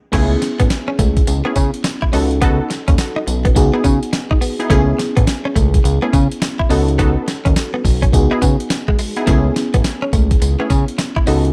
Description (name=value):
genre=R&B, new jack swing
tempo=105 BPM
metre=4/4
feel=swing 63% on 16ths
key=unclear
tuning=A4 = 440 Hz
part: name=FM electric piano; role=accompaniment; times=0.1-11.5 s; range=B3 to A4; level=-24 LUFS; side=equal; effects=none
part: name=direct-recorded clean electric guitar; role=riff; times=0.1-11.4 s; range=G#3 to E4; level=-26 LUFS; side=equal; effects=lush chorus
part: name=funky polysynth comp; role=stabs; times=0.1-11.5 s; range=A3 to A4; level=-26 LUFS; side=equal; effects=chorus, digital delay
part: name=fat analog bass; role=bass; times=0.1-11.5 s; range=A1 to C#3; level=-19 LUFS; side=equal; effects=none
part: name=dusty soul sampler-style drum kit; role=drums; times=0.1-11.5 s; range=crash cymbal, hi-hat, kick drum, snare drum, tambourine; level=-19 LUFS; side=equal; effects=none
room=little or no reverb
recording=none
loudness=-16 LUFS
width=mono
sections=0.1-11.5 A section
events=none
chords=0.1 Amaj7; 2.1 B7/C#; 3.6 Emaj7/C#; 4.7 Amaj7; 6.7 B7/C#; 8.1 Emaj7/C#; 9.3 Amaj7